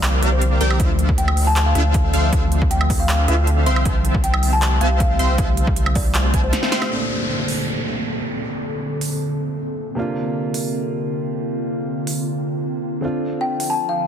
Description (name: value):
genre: future bass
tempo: 157 BPM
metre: 4/4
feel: half-time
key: unclear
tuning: A4 = 436 Hz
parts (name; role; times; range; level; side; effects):
- ethereal airy pad; sustained chords; 0.0-14.1 s; D3 to F5; -26 LUFS; equal; ensemble chorus, built-in reverb, sidechain pumping
- wide unison pluck; arpeggios; 0.0-6.9 s; F4 to C6; -31 LUFS; equal; cassette tape, sidechain pumping
- supersaw stab; riff; 0.0-6.9 s; C4 to C6; -25 LUFS; equal; sidechain pumping, low-pass filter, digital delay
- saturated sub bass; bass; 0.0-6.5 s; C2 to D2; -18 LUFS; equal; sidechain pumping
- big-room dance drum kit; drums; 0.0-13.7 s; handclaps, hi-hat, snare drum, woodblock; -25 LUFS; right 2 dB; overdrive
- kalimba; melody; 0.3-6.7, 13.4-14.0 s; C5 to A5; -25 LUFS; left 2 dB; sidechain pumping
- electronic kick drum; drums; 0.8-6.4 s; none; -21 LUFS; equal; overdrive
- dark grand piano; accompaniment; 6.9-14.1 s; Bb2 to F4; -26 LUFS; right 2 dB; sidechain pumping, digital delay
- downlifter; sound effects; 6.9-10.0 s; none; -28 LUFS; right 1 dB; none
room: light reverb, digital ambience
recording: dense, heavily limited modern master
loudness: -17 LUFS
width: side -9 dB against mid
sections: 0.0-6.9 A section; 6.9-14.1 B section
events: drop 0.0-6.9; drum fill 6.5-6.9; band accent 6.8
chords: 0.0 C9sus4; 0.8 Dm9; 3.7 Fmaj9/C; 6.9 Bbmaj9; 10.0 C9sus4; 13.0 Dm7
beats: 0.03 0.41 | 0.80 1.18 1.56 1.94 | 2.33 2.71 3.09 3.47 | 3.85 4.24 4.62 5.00 | 5.38 5.77 6.15 6.53 | 6.91 7.29 7.68 8.06 | 8.44 8.82 9.21 9.59 | 9.97 10.35 10.73 11.12 | 11.50 11.88 12.26 12.64 | 13.03 13.41 13.79